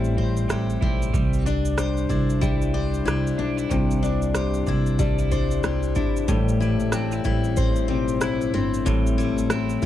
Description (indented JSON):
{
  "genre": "acoustic pop",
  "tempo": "93 BPM",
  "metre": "4/4",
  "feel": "swing 60% on 16ths",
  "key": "A minor",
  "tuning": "A4 = 442 Hz",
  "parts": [
    { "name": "picked steel-string acoustic guitar", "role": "accompaniment", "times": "0.0-9.9 s", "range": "A2 to C5", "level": "-25 LUFS", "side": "left 7 dB", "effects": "cassette tape" },
    { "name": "twelve-string electric guitar", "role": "arpeggios", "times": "0.0-9.9 s", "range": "G3 to E4", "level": "-32 LUFS", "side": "right 10 dB", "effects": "cassette tape" },
    { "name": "upright bass", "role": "bass", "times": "0.0-9.9 s", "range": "G1 to C2", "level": "-25 LUFS", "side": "right 1 dB", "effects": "none" },
    { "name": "booming analog drum machine", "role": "drums", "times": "0.0-9.9 s", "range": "kick drum, rim click, shaker", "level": "-26 LUFS", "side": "right 1 dB", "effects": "cassette tape" }
  ],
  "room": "small room reverb",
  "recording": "home recording on cassette",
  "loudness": "-20 LUFS",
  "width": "side -12 dB against mid",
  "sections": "0.0-6.3 A section; 6.3-9.9 B section",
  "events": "none",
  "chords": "0.0 Am7; 1.1 Cadd9; 6.3 Am7"
}